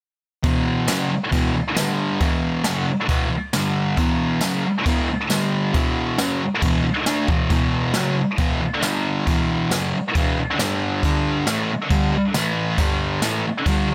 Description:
garage rock duo or trio; 136 BPM; 4/4; straight; E minor; A4 = 440 Hz
thick fuzz guitar; riff; 0.4-13.9 s; E2 to D4; -22 LUFS; equal; distortion
jazz brush drum kit; drums; 0.4-13.8 s; crash cymbal, kick drum, snare drum; -26 LUFS; equal
tambourine; percussion; 0.9-13.3 s; -32 LUFS; equal
little or no reverb; -21 LUFS; mono
0.4-13.9 A section
0.4 E5; 1.8 G5; 2.2 E5; 3.5 G5; 4.0 E5; 5.3 G5; 5.7 E5; 8.8 G5; 9.3 E5; 10.6 G5; 12.3 A5; 12.8 G5
| 0.44 0.89 1.33 1.77 | 2.21 2.65 3.10 3.54 | 3.98 4.42 4.86 5.31 | 5.75 6.19 6.63 7.07 | 7.51 7.96 8.40 8.84 | 9.28 9.72 10.16 10.60 | 11.03 11.47 11.91 12.35 | 12.79 13.22 13.66

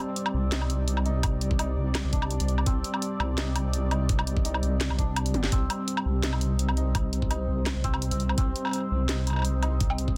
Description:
half-time drum and bass; 168 BPM; 4/4; half-time; C minor; A4 = 441 Hz
dark analog pad; sustained chords; 0.0-10.2 s; G3 to D5; -35 LUFS; equal; chorus, sidechain pumping
santur; arpeggios; 0.0-10.2 s; C4 to Eb4; -39 LUFS; equal; dub echo
drum and bass drum kit; drums; 0.2-10.1 s; hi-hat, snare drum, toms, woodblock; -33 LUFS; equal
deep soft wobble bass; bass; 0.3-10.2 s; G1 to C2; -29 LUFS; equal; chorus
electronic kick drum; drums; 1.2-10.1 s; -30 LUFS; equal
digital ambience; dense, heavily limited modern master; -27 LUFS; mono
0.0-10.2 A section
drum fill 5.3
0.0 Cm
0.16 0.52 0.88 | 1.24 1.59 1.95 2.31 | 2.66 3.02 3.38 3.73 | 4.09 4.45 4.81 5.16 | 5.52 5.88 6.24 6.59 | 6.95 7.31 7.66 8.02 | 8.38 8.73 9.09 9.45 | 9.81 10.16

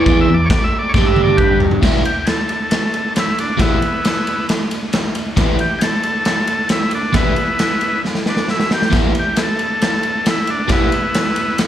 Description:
garage rock duo or trio; 135 BPM; 4/4; straight; E minor; A4 = 440 Hz
combo organ; melody; 0.0-11.6 s; B3 to E5; -19 LUFS; left 1 dB; slapback echo
overdriven electric guitar; riff; 0.0-10.9 s; E2 to E4; -16 LUFS; right 1 dB; slapback echo
raw garage drum kit; drums; 0.1-11.7 s; crash cymbal, kick drum, ride cymbal, snare drum, toms; -17 LUFS; equal
small room ambience; live gig heard through the venue's PA, club reverb; -14 LUFS; side -11 dB against mid
0.0-1.8 A section; 1.8-11.7 B section
transistor combo organ solo 0.0-1.8; drum fill 0.9-1.8, 8.0-8.9
0.0 Em
| 0.06 0.50 0.94 1.38 | 1.82 2.26 2.70 3.15 | 3.59 4.03 4.48 4.92 | 5.37 5.81 6.26 6.70 | 7.15 7.59 8.04 8.48 | 8.93 9.38 9.82 10.27 | 10.71 11.16 11.61

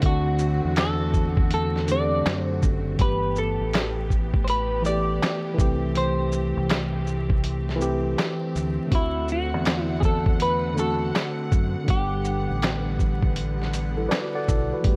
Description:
lo-fi hip hop; 81 BPM; 4/4; swing 65% on 16ths; G major; A4 = 440 Hz
semi-hollow electric guitar; melody; 0.0-13.3 s; E4 to D5; -30 LUFS; equal; analog chorus, low-pass filter
tine electric piano; accompaniment; 0.0-15.0 s; D3 to F#5; -31 LUFS; equal; low-pass filter
warm studio string section; sustained chords; 0.0-15.0 s; D3 to F#5; -37 LUFS; equal; low-pass filter
deep dub fingered electric bass; bass; 0.0-15.0 s; F#1 to F#2; -30 LUFS; equal
lo-fi sampler-style drum kit; drums; 0.0-15.0 s; handclaps, hi-hat, kick drum, shaker, snare drum; -26 LUFS; equal; vintage 12-bit sampler grit
little or no reverb; vinyl crackle; -24 LUFS; mono
0.0-14.8 A section
tine electric piano fill 13.7-14.8
0.0 D7; 3.0 G69; 5.6 C6; 8.9 D7; 11.9 Gmaj7
| 0.03 0.77 1.51 2.25 | 2.99 3.73 4.47 5.21 | 5.96 6.70 7.44 8.18 | 8.92 9.66 10.40 11.14 | 11.88 12.62 13.36 14.10 | 14.84

